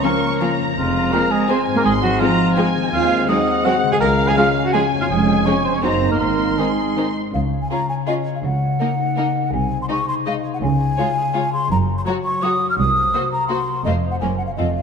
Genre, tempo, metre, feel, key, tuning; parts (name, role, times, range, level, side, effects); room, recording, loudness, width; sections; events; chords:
cinematic, playful, whimsical film cue; 166 BPM; 3/4; straight; Db major; A4 = 439 Hz
warm studio violin section; melody; 0.0-14.7 s; Ab4 to Db6; -27 LUFS; left 2 dB
mellow cor anglais; second line; 0.0-7.2 s; F4 to Ab5; -21 LUFS; right 2 dB
warm studio violin section; second line; 0.0-14.7 s; Ab3 to Gb4; -28 LUFS; left 3 dB
warm studio viola section; accompaniment; 0.0-14.7 s; Eb3 to Db4; -28 LUFS; right 2 dB
mellow French horn section; sustained chords; 0.0-7.2 s; F3 to Eb4; -22 LUFS; left 2 dB
concert harp; arpeggios; 0.0-14.8 s; F2 to Gb5; -26 LUFS; left 8 dB
warm studio cello section; bass; 0.0-14.8 s; C2 to Bb4; -23 LUFS; right 3 dB
warm studio double bass section; bass; 0.8-14.8 s; F1 to Eb2; -24 LUFS; right 4 dB
mellow hollow concert flute; second line; 7.3-14.8 s; Eb5 to F6; -21 LUFS; left 1 dB
moderate scoring stage reverb, RT60 2.0 s; -16 LUFS; side -6 dB against mid
0.0-7.3 A section; 7.3-14.8 B section
0.0 Bbm/Db; 0.8 Fm; 1.8 Fm/Ab; 2.9 Ab7/Eb; 4.0 Db; 5.1 Db/F; 5.8 Ebm/Gb; 6.2 Ab; 7.3 Db; 8.4 Ebm7/Db; 9.5 Ab/C; 10.6 Db; 11.7 Gb5; 12.8 Cm7b5; 13.9 F5; 14.2 Gb